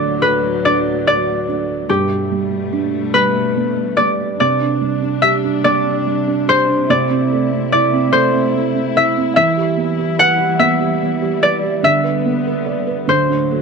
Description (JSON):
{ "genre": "children's music, lullaby", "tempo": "48 BPM (dotted quarters)", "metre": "6/8", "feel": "straight", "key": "G major", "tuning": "A4 = 440 Hz", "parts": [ { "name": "concert harp", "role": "melody", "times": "0.0-13.6 s", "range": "G4 to F#5", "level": "-16 LUFS", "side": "left 2 dB", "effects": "none" }, { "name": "felt-muted upright piano", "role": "accompaniment", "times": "0.0-13.6 s", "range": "G2 to D5", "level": "-19 LUFS", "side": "right 10 dB", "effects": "none" }, { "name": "dark chamber string section", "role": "sustained chords", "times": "0.0-13.6 s", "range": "D2 to E4", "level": "-23 LUFS", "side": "left 11 dB", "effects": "none" } ], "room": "light reverb, small room ambience", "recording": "1960s-style stereo with parts hard left and right", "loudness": "-14 LUFS", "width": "side -5 dB against mid", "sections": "0.0-4.4 A section; 4.4-13.6 B section", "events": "none", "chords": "0.0 D; 1.9 Gadd9; 4.4 Csus2; 6.9 Am/C; 9.4 Em; 11.8 G/D; 13.1 D" }